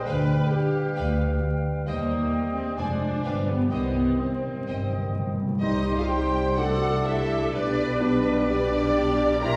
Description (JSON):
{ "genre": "classical, dramatic, fast romantic movement for symphony orchestra", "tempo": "124-134 BPM", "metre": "4/4", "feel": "rubato", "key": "C minor", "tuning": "A4 = 444 Hz", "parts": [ { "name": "mellow cor anglais", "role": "second line", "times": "0.0-9.6 s", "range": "C5 to F5", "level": "-39 LUFS", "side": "equal", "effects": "none" }, { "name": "mellow hollow silver concert flute", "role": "second line", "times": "0.0-9.6 s", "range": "D4 to Ab5", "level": "-36 LUFS", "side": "equal", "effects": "none" }, { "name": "warm clarinet", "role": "second line", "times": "0.0-9.6 s", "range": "D4 to C5", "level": "-39 LUFS", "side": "equal", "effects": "none" }, { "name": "mellow bassoon", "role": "accompaniment", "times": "0.0-9.6 s", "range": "Eb3 to A3", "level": "-37 LUFS", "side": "equal", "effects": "none" }, { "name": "rich studio viola section", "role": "accompaniment", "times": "0.0-9.6 s", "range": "Bb3 to B4", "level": "-32 LUFS", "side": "equal", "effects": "none" }, { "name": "mellow French horn section", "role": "sustained chords", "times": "0.0-9.6 s", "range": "G3 to G4", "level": "-36 LUFS", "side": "equal", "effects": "none" }, { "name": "warm symphonic violin section", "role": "melody", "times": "0.1-9.6 s", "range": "B4 to Bb5", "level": "-36 LUFS", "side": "equal", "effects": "none" }, { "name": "bright symphonic violin section", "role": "second line", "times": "0.1-9.6 s", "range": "B4 to Bb5", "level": "-40 LUFS", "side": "equal", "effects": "none" }, { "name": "rich symphonic cello section", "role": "bass", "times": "0.1-9.6 s", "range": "D2 to B4", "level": "-36 LUFS", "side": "equal", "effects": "none" }, { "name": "rich symphonic double bass section", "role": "bass", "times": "0.1-9.6 s", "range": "F1 to Eb2", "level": "-31 LUFS", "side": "equal", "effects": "none" }, { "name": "timpani", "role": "percussion", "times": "3.7-6.3 s", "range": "C3", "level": "-33 LUFS", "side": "equal", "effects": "none" }, { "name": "clear trombone section", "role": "sustained chords", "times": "5.6-9.6 s", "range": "Bb2 to A3", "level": "-38 LUFS", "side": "equal", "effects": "none" }, { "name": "clear trumpet", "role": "stabs", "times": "5.6-9.6 s", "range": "C5 to D5", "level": "-35 LUFS", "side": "equal", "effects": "none" } ], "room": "wet scoring stage reverb, RT60 1.7 s", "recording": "heard from further back in the room, vinyl crackle, studio reverb", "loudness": "-25 LUFS", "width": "mono", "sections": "0.0-5.6 A section; 5.6-9.6 B section", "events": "timpani fill 3.7-5.6", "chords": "0.1 G7/D; 1.9 Cm/Eb; 2.8 Dm7b5/F; 3.2 G7; 3.7 Cm; 6.6 D7/C; 7.5 G/B" }